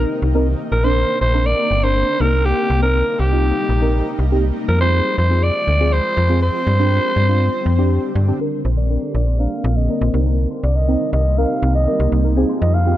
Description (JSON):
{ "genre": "pop", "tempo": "121 BPM", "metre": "4/4", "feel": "straight", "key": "C minor", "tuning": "A4 = 439 Hz", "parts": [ { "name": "raspy alto saxophone", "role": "melody", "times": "0.0-13.0 s", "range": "G4 to F5", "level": "-21 LUFS", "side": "right 1 dB", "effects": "low-pass filter" }, { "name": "deep mellow chord stab", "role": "accompaniment", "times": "0.0-13.0 s", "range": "C4 to Bb4", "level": "-23 LUFS", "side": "right 1 dB", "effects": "chorus, phaser, low-pass filter" }, { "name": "shimmering ambient pad", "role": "sustained chords", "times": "0.0-13.0 s", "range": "C3 to Eb4", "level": "-25 LUFS", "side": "left 2 dB", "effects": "chorus, built-in reverb, phaser, low-pass filter" }, { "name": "slap-like FM bass", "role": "bass", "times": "0.0-12.9 s", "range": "G1 to G2", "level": "-16 LUFS", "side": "equal", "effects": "none" }, { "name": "glassy wavetable pluck", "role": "arpeggios", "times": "8.4-13.0 s", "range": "D3 to Bb6", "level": "-30 LUFS", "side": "equal", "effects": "chorus, low-pass filter, analog delay" } ], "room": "digital ambience", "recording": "dry, gritty hardware recording", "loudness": "-15 LUFS", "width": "side -13 dB against mid", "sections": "0.0-8.4 A section; 8.4-13.0 B section", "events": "build-up 8.4-13.0", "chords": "0.5 Bbadd9; 2.2 Cm7; 4.4 Fm; 6.4 Gsus4; 8.4 Bbadd9; 10.1 Cm7; 12.4 Fm" }